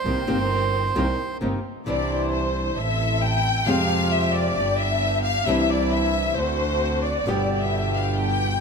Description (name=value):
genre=tango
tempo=133 BPM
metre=4/4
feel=rubato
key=C major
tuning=A4 = 440 Hz
part: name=bandoneon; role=melody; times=0.0-1.4 s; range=C5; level=-26 LUFS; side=right 6 dB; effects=none
part: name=warm studio violin section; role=second line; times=0.0-8.6 s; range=C4 to G5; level=-24 LUFS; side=left 3 dB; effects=none
part: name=clear double bass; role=bass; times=0.0-8.6 s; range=G1 to F2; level=-26 LUFS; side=right 2 dB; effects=none
part: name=flamenco guitar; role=accompaniment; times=0.1-8.6 s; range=B2 to G4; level=-27 LUFS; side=left 1 dB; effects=none
part: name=dark studio string section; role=stabs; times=0.1-8.6 s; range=Ab3 to C5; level=-31 LUFS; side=right 2 dB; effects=none
room=moderate concert hall reverb, RT60 2.5 s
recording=close, detailed microphones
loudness=-20 LUFS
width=side -5 dB against mid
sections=0.0-1.9 A section; 1.9-8.6 B section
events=violin section solo 1.9-8.6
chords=0.1 Cm7; 1.9 Cadd9; 2.8 Am; 3.7 Fmadd9; 4.6 G; 5.5 Cadd9; 6.4 D7; 7.3 G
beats=| 0.05 0.50 0.96 1.41 | 1.87 2.32 2.77 3.22 | 3.67 4.12 4.57 5.01 | 5.46 5.91 6.36 6.81 | 7.26 7.71 8.17